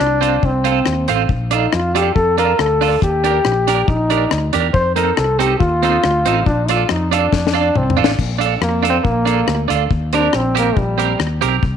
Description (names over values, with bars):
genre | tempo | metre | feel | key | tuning
ska | 139 BPM | 4/4 | straight | Bb major | A4 = 440 Hz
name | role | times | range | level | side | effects
bright trombone | melody | 0.0-11.2 s | G3 to C5 | -18 LUFS | left 1 dB | slapback echo
mellow fretless electric bass | bass | 0.0-11.8 s | A1 to F2 | -20 LUFS | left 1 dB | none
twelve-string electric guitar | accompaniment | 0.2-11.6 s | C4 to Bb4 | -19 LUFS | right 12 dB | slapback echo
deep reggae drum kit | drums | 0.2-11.7 s | crash cymbal, hi-hat, kick drum, rim click, snare drum, toms | -20 LUFS | left 4 dB | slapback echo
room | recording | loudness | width
light reverb | 1960s-style stereo | -14 LUFS | side -8 dB against mid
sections
0.0-8.2 A section; 8.2-11.8 A section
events
trombone solo 0.0-8.2, 8.2-11.8; drum fill 7.3-8.2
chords
0.0 F; 1.3 Bbmaj7; 3.0 Ebmaj7; 4.7 F7; 6.5 Bbmaj7; 9.9 Eb6